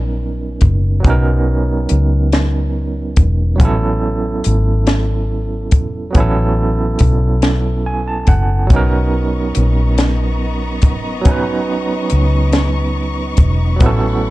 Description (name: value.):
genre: slow six-eight R&B.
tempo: 47 BPM (dotted quarters).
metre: 6/8.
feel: straight.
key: B major.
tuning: A4 = 444 Hz.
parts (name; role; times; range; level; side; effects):
overdriven tine electric piano; accompaniment; 0.0-14.3 s; F#3 to A5; -19 LUFS; right 4 dB; fast tremolo.
vintage muted fingered electric bass; bass; 0.0-14.3 s; E1 to C#2; -16 LUFS; equal; none.
compact cocktail drum kit; drums; 0.6-14.0 s; hi-hat, kick drum, snare drum; -14 LUFS; equal; none.
warm studio string section; sustained chords; 8.7-14.3 s; A3 to C#6; -26 LUFS; left 4 dB; none.
room: small room ambience.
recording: dark, warm production.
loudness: -13 LUFS.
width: side -18 dB against mid.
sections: 0.0-14.3 A section.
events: tine electric piano fill 7.4-8.7.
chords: 0.0 Bmaj9; 3.6 A69; 8.7 Bmaj9.